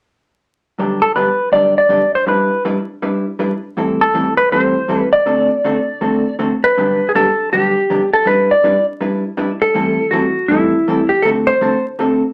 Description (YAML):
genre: country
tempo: 160 BPM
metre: 4/4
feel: swing 64% on 8ths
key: G major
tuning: A4 = 440 Hz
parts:
  - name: vintage hollow-body jazz guitar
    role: accompaniment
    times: 0.8-12.2 s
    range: G2 to B4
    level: -20 LUFS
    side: equal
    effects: none
  - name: clean lap steel guitar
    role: melody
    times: 1.0-11.9 s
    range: E4 to D5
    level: -16 LUFS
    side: equal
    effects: none
room: wet small room reverb, RT60 0.6 s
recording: vinyl crackle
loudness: -15 LUFS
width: mono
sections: 0.8-6.8 A section; 6.8-12.3 B section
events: none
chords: 0.8 Gmaj7; 2.3 Em7/G; 3.8 Am7; 5.3 D7; 6.8 Gmaj7; 8.3 Em7/G; 9.8 Am7; 11.2 D7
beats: | 0.78 1.15 1.53 1.90 | 2.28 2.65 3.02 3.40 | 3.77 4.15 4.52 4.89 | 5.27 5.64 6.02 6.39 | 6.76 7.14 7.51 7.89 | 8.26 8.63 9.01 9.38 | 9.76 10.13 10.50 10.88 | 11.25 11.62 11.99